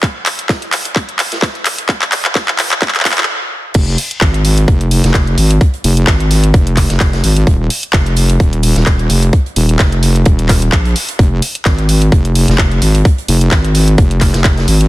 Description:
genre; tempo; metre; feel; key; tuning
bass house; 129 BPM; 4/4; swing 55% on 16ths; F minor; A4 = 442 Hz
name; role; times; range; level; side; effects
big rock drum kit; drums; 0.0-14.9 s; hi-hat, snare drum; -26 LUFS; right 2 dB; sidechain pumping on hats, high-pass filter on hats, studio reverb, high-pass filter on snare, high-pass filter on room
electronic kick drum; drums; 0.0-14.6 s; none; -11 LUFS; equal; studio reverb
garage drum kit; drums; 0.0-14.9 s; crash cymbal, handclaps, hi-hat; -16 LUFS; equal; high-pass filter on snare, studio reverb, high-pass filter on hats, high-pass filter on cymbals
wobble bass; bass; 3.7-14.9 s; Eb1 to Bb1; -11 LUFS; equal; chorus, tube saturation, sidechain pumping
room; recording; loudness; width
small room ambience; dense, heavily limited modern master, high-pass filter; -10 LUFS; side -17 dB against mid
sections
0.0-3.7 A section; 3.7-14.9 B section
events
build-up 0.0-3.7; drum fill 0.0-3.3; stop 3.3-3.7; drop 3.7-14.9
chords
none

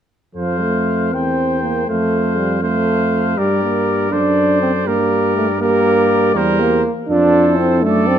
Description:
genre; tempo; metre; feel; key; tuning
classical, brass quintet; 80 BPM (dotted quarters); 6/8; rubato; F major; A4 = 440 Hz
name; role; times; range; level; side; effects
clear trumpet; melody; 0.4-8.2 s; C5 to G5; -23 LUFS; left 8 dB; none
bright trumpet; second line; 0.4-8.2 s; A4 to C5; -23 LUFS; right 6 dB; none
warm French horn; accompaniment; 0.4-8.2 s; D4 to Bb4; -22 LUFS; left 7 dB; none
warm trombone; accompaniment; 0.4-8.2 s; F3 to D4; -17 LUFS; right 2 dB; none
warm tuba; bass; 0.4-8.2 s; E2 to G2; -21 LUFS; right 3 dB; none
room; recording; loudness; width
moderate recital hall reverb, RT60 1.5 s; close, detailed microphones; -14 LUFS; side -9 dB against mid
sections
0.4-8.2 A section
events
none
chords
0.4 F; 1.1 C7/E; 1.9 F; 3.4 Gm; 4.1 D7/F#; 4.9 Gm; 6.3 C7/E; 7.1 F

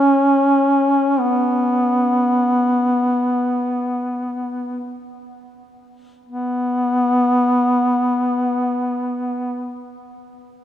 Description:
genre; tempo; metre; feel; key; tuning
caucasian folk, Caucasian lament; free time; none; none; unclear; A4 = 440 Hz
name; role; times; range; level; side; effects
warm duduk; solo; 0.0-9.8 s; B3 to C#4; -16 LUFS; equal; none
room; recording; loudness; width
wet cathedral reverb, RT60 5.2 s; minimal, uncompressed stereo recording; -16 LUFS; side -11 dB against mid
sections
0.0-6.3 A section; 6.3-10.6 B section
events
slowing down 0.0-6.3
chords
none

